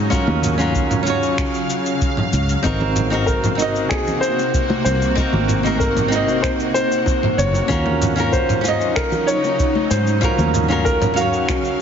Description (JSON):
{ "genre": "sunset chillout", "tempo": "95 BPM", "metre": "4/4", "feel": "straight", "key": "Eb dorian", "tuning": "A4 = 441 Hz", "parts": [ { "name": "flamenco guitar", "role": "accompaniment", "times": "0.0-11.8 s", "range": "C4 to F5", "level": "-21 LUFS", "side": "right 2 dB", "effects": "auto-pan, digital delay" }, { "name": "shimmering ambient pad", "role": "sustained chords", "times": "0.0-11.8 s", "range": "C3 to F5", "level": "-24 LUFS", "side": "equal", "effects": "chorus, built-in reverb" }, { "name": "fingered electric bass", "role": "bass", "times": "0.0-11.8 s", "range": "Gb1 to Ab2", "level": "-22 LUFS", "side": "equal", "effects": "tube saturation" }, { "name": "dusty soul sampler-style drum kit", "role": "drums", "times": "0.1-11.8 s", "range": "finger snaps, shaker, toms", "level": "-25 LUFS", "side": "left 1 dB", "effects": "overdrive" }, { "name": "electronic kick drum", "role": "drums", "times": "0.1-11.6 s", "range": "none", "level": "-23 LUFS", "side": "equal", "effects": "none" }, { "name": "congas and bongos", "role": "percussion", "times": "0.3-11.6 s", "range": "none", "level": "-28 LUFS", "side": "left 2 dB", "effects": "none" }, { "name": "dark concert grand piano", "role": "melody", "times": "3.3-11.8 s", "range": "Gb4 to Db5", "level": "-22 LUFS", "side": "left 1 dB", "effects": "digital delay" } ], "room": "moderate lush hall reverb, RT60 1.8 s", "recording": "heavily compressed radio sound, multiband compression, nothing above 7.5 kHz", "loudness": "-16 LUFS", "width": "side -7 dB against mid", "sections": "0.0-11.8 A section", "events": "none", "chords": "0.0 Ebm7; 2.6 Ab9; 7.7 Ebm7" }